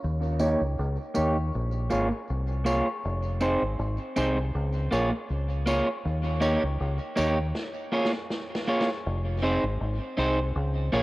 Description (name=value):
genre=dub reggae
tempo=80 BPM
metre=4/4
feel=straight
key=F minor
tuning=A4 = 440 Hz
part: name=deep dub fingered electric bass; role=bass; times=0.0-11.0 s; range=F1 to Eb2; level=-28 LUFS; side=equal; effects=none
part: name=electric guitar at the edge of break-up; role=accompaniment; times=0.4-11.0 s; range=Bb3 to Db5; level=-27 LUFS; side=right 1 dB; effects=low-pass filter, cassette tape, tape echo
part: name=tambourine and woodblock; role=percussion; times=0.4-7.4 s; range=none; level=-45 LUFS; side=right 1 dB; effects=tape echo
part: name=snare drum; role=drums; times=7.6-9.0 s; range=none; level=-35 LUFS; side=equal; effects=cassette tape, tape echo
room=moderate spring reverb, RT60 2.5 s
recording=home recording on cassette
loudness=-25 LUFS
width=side -19 dB against mid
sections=0.0-9.1 A section; 9.1-11.0 B section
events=filter sweep on clean electric guitar 0.0-9.1; break 7.6-9.1; drum fill 7.6-9.1; part muted 9.1-11.0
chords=0.0 Eb7; 1.5 Bbm7; 3.0 Fm7; 4.5 Db6; 6.0 Eb7; 7.6 Bbm7; 9.1 Fm7